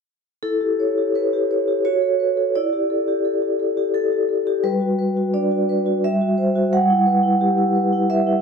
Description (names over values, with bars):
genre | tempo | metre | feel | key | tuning
classical, contemporary piece for solo vibraphone | 86 BPM | 3/4 | rubato | E minor | A4 = 440 Hz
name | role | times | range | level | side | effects
vibraphone with medium mallets | solo | 0.4-8.4 s | G3 to F#5 | -17 LUFS | equal | none
room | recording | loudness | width
light reverb | dark, warm production | -17 LUFS | side -6 dB against mid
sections
0.4-8.4 A section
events
none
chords
0.4 Em6; 1.9 F#madd11; 2.6 Em7; 4.7 Gmaj7; 6.0 Emadd9/G